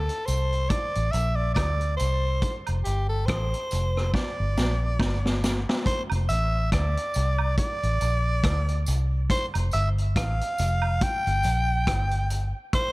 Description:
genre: roots reggae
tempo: 70 BPM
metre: 4/4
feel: swing 58% on 16ths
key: F major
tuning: A4 = 440 Hz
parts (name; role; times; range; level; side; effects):
- raspy soprano saxophone; melody; 0.0-12.9 s; G4 to G5; -28 LUFS; equal; tape echo
- vintage muted fingered electric bass; bass; 0.0-12.5 s; F1 to D2; -25 LUFS; equal; none
- vintage drum kit; drums; 0.1-12.9 s; hi-hat, kick drum, rim click, snare drum; -27 LUFS; equal; none
- tambourine and woodblock; percussion; 0.3-12.5 s; none; -36 LUFS; right 6 dB; none
room: small room ambience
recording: none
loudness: -23 LUFS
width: side -21 dB against mid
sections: 0.0-5.9 A section; 5.9-12.9 B section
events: drum fill 4.1-5.9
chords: 0.0 F (rootless); 0.7 Amadd11; 2.4 F; 4.1 Gm; 5.9 F; 7.6 Amadd11; 9.3 F; 11.0 Gm

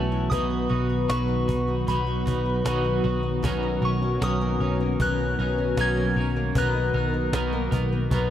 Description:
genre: dream pop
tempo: 77 BPM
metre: 4/4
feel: straight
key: B major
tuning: A4 = 439 Hz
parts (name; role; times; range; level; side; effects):
- soft synth bell; melody; 0.0-7.3 s; A5 to G#6; -31 LUFS; left 1 dB; chorus, digital delay
- clean electric guitar; accompaniment; 0.0-8.3 s; B2 to A#4; -32 LUFS; right 4 dB; tremolo, lush chorus
- warm analog pad; sustained chords; 0.0-8.3 s; B2 to A#4; -29 LUFS; right 1 dB; chorus
- fingerpicked twelve-string acoustic guitar; arpeggios; 0.0-8.3 s; B2 to C#5; -28 LUFS; left 4 dB; wide subtle chorus, digital delay
- vintage muted picked electric bass; bass; 0.0-8.3 s; B1; -27 LUFS; equal; none
- cajon; drums; 0.3-8.3 s; none; -29 LUFS; equal; none
room: moderate lush hall reverb, RT60 2.2 s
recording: dark, warm production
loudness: -22 LUFS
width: side -11 dB against mid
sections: 0.0-8.3 A section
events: none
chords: 0.3 B; 3.4 D#m7/B; 6.6 Bmaj7

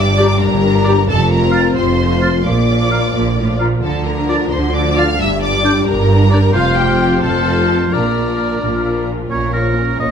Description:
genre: cinematic, heroic adventure film score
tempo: 88 BPM (dotted quarters)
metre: 6/8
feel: straight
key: unclear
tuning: A4 = 440 Hz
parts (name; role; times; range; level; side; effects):
- warm symphonic violin section; melody; 0.0-10.1 s; F5 to F6; -22 LUFS; left 2 dB; none
- warm symphonic violin section; second line; 0.0-10.1 s; F4 to F5; -22 LUFS; left 2 dB; none
- warm symphonic viola section; accompaniment; 0.0-10.1 s; F3 to F4; -23 LUFS; left 2 dB; none
- dark French horn section; sustained chords; 0.0-10.1 s; G3 to G4; -21 LUFS; left 8 dB; none
- clear symphonic double bass section; bass; 0.0-10.1 s; F1 to D2; -18 LUFS; right 3 dB; none
- rich symphonic cello section; bass; 0.0-10.1 s; F2 to D3; -19 LUFS; right 2 dB; none
- clear oboe; second line; 0.2-10.1 s; Bb4 to F5; -23 LUFS; right 1 dB; none
- dark clarinet; second line; 0.2-9.1 s; D4 to G4; -23 LUFS; left 2 dB; none
- mellow flute section; second line; 0.2-9.0 s; Bb5 to A6; -23 LUFS; left 1 dB; none
room: light reverb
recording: close, detailed microphones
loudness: -12 LUFS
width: side -7 dB against mid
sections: 0.0-9.3 A section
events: none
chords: 0.0 Gm; 1.1 F; 2.5 Bb; 3.8 Dm; 5.2 Gm; 6.5 F; 7.9 Bb; 9.3 Bbm

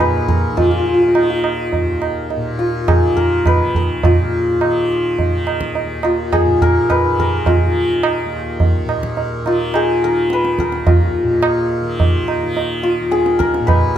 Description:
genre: indian classical, Hindustani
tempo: 105 BPM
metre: 3/4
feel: straight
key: unclear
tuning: A4 = 440 Hz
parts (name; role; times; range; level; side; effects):
- santur; melody; 0.0-14.0 s; F4 to Cb5; -17 LUFS; left 1 dB; none
- tanpura; drone; 0.0-14.0 s; Eb2 to Eb3; -23 LUFS; equal; none
- tabla; percussion; 0.3-13.9 s; none; -18 LUFS; right 2 dB; none
room: moderate recital hall reverb, RT60 1.4 s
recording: close, detailed microphones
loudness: -14 LUFS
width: side -10 dB against mid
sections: 0.0-4.0 A section; 4.0-14.0 B section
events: speeding up 0.0-14.0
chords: none

